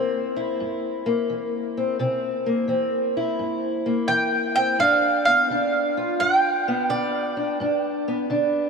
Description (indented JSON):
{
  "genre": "acoustic country blues, solo or duo",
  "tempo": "86 BPM",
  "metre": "4/4",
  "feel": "swing 66% on 8ths",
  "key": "C mixolydian",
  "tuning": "A4 = 440 Hz",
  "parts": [
    { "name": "mandolin", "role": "melody", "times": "0.0-8.7 s", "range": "D5 to C6", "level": "-21 LUFS", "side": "right 2 dB", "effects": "analog delay" },
    { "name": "fingerpicked steel-string acoustic guitar", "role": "accompaniment", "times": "0.0-8.7 s", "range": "G2 to F4", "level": "-23 LUFS", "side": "left 1 dB", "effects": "wide subtle chorus" }
  ],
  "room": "wet huge ambient reverb, RT60 4.0 s",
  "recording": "dreamy mix soaked in reverb, faint mains hum",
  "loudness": "-20 LUFS",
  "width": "side -5 dB against mid",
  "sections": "0.0-8.7 A section",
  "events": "none",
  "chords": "0.0 C7; 4.8 G7"
}